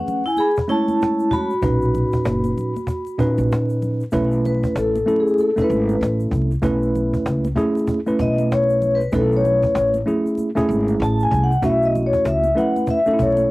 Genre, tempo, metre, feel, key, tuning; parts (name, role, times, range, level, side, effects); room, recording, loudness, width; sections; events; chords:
hip hop, jazz-hop; 96 BPM; 4/4; swing 60% on 16ths; B major; A4 = 440 Hz
vibraphone with soft mallets; melody; 0.0-13.5 s; G#4 to B5; -20 LUFS; left 2 dB; cassette tape
vibraphone with hard mallets; second line; 0.0-3.5 s; C#4 to G#4; -22 LUFS; equal; cassette tape
mellow tine electric piano; accompaniment; 0.0-13.5 s; A#2 to C#5; -21 LUFS; right 1 dB; medium stereo tremolo, cassette tape
cajon; drums; 0.1-13.4 s; -26 LUFS; equal; cassette tape
congas and egg shaker; percussion; 0.1-13.5 s; -35 LUFS; left 2 dB
upright bass; bass; 1.6-13.4 s; F#1 to C#2; -22 LUFS; equal
light reverb; home recording on cassette, vinyl crackle; -17 LUFS; side -20 dB against mid
0.0-4.1 A section; 4.1-13.5 B section
vibraphone solo 4.1-13.5
0.0 Amaj9; 1.6 Bmaj9; 4.1 B9sus4